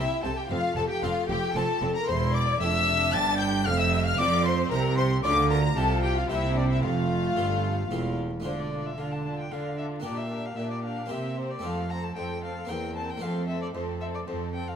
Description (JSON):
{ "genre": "classical, baroque-style concerto movement with solo episodes", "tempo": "114 BPM", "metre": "3/4", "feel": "straight", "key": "F major", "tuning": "A4 = 440 Hz", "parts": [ { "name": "rich violin", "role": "melody", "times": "0.0-14.8 s", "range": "C5 to A6", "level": "-31 LUFS", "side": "left 3 dB", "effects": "none" }, { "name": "warm studio violin section", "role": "melody", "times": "0.0-14.8 s", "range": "A4 to A6", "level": "-37 LUFS", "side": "left 3 dB", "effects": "none" }, { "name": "rich chamber violin section", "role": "second line", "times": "0.0-14.8 s", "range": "D4 to A5", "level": "-32 LUFS", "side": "left 3 dB", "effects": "none" }, { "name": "harpsichord", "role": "accompaniment", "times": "0.0-14.8 s", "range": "E2 to C5", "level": "-35 LUFS", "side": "left 1 dB", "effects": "none" }, { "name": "rich chamber viola section", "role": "accompaniment", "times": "0.0-14.8 s", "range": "A3 to F4", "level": "-36 LUFS", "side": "right 2 dB", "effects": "none" }, { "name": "rich chamber cello section", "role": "bass", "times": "0.0-14.7 s", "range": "E2 to F3", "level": "-30 LUFS", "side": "right 2 dB", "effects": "none" }, { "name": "warm chamber double bass section", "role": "bass", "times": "0.0-8.4 s", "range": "E1 to F2", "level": "-31 LUFS", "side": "right 3 dB", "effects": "none" } ], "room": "light reverb", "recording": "none", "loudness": "-24 LUFS", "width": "side -8 dB against mid", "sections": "0.0-8.4 A section; 8.4-14.8 B section", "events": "none", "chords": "0.0 C; 0.5 F; 2.1 C/E; 3.7 F; 4.7 C7; 5.2 Dm; 5.8 F/C; 6.3 C7; 6.8 F; 8.4 Dm; 10.0 Gm/Bb; 11.1 C7; 11.6 F; 12.7 C7/E; 13.2 F", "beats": "| 0.50 1.03 1.56 | 2.08 2.61 3.14 | 3.66 4.19 4.72 | 5.24 5.77 6.30 | 6.83 7.37 7.91 | 8.45 8.98 9.52 | 10.04 10.57 11.11 | 11.64 12.16 12.69 | 13.22 13.75 14.27" }